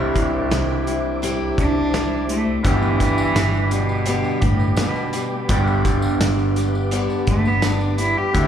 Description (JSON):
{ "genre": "folk rock and heartland rock", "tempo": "84 BPM", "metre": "4/4", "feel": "straight", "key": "G major", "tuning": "A4 = 440 Hz", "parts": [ { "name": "picked steel-string acoustic guitar", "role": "accompaniment", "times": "0.0-8.5 s", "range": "G2 to A4", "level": "-27 LUFS", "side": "left 4 dB", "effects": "none" }, { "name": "mellow tonewheel organ", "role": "sustained chords", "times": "0.0-8.5 s", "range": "A4 to D6", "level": "-32 LUFS", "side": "left 1 dB", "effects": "slow rotary speaker" }, { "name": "electric guitar through a small old amp", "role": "riff", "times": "0.0-8.5 s", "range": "G2 to G4", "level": "-24 LUFS", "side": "right 2 dB", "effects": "slapback echo" }, { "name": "hollow-body short-scale picked electric bass", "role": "bass", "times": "0.0-8.5 s", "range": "G1 to D2", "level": "-22 LUFS", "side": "equal", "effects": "none" }, { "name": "loose indie drum kit", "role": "drums", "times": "0.2-8.5 s", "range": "hi-hat, kick drum, snare drum", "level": "-24 LUFS", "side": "equal", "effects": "none" }, { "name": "rich cello", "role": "melody", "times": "1.6-8.5 s", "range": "A2 to G4", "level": "-22 LUFS", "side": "right 1 dB", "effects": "slapback echo, tape echo" }, { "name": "tambourine", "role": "percussion", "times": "2.6-8.4 s", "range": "none", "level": "-40 LUFS", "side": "right 1 dB", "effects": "none" } ], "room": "light reverb, small room ambience", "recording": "live gig heard through the venue's PA, club reverb", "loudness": "-17 LUFS", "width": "side -9 dB against mid", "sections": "0.0-8.5 A section", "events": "cello solo 0.0-8.5", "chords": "0.0 Cadd9; 2.7 G" }